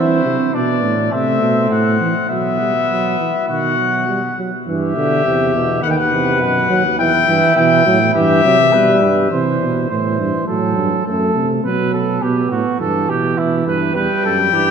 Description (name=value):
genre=classical, imitative canzona for brass ensemble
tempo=103 BPM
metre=4/4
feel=straight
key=E minor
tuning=A4 = 440 Hz
part: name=warm trumpet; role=melody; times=0.0-9.3, 13.9-14.7 s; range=C5 to G5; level=-17 LUFS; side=left 7 dB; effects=none
part: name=mellow trumpet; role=second line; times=0.0-14.7 s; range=B3 to C5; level=-20 LUFS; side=right 3 dB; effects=none
part: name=dark euphonium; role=accompaniment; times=0.0-14.7 s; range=B2 to C4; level=-19 LUFS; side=right 2 dB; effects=none
part: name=mellow tuba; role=bass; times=0.0-14.7 s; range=D#2 to E3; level=-20 LUFS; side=right 3 dB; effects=none
room=wet cathedral reverb, RT60 4.2 s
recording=none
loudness=-13 LUFS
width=side -6 dB against mid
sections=0.0-4.7 A section; 4.7-9.3 B section; 9.3-14.7 A section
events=none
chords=0.0 Am; 2.3 Bsus4; 3.5 B; 4.7 Em/G; 5.8 B/D#; 7.0 Em; 8.1 Em/G; 9.3 C; 10.5 F#dim; 11.6 B5; 12.8 Em/G; 13.9 Em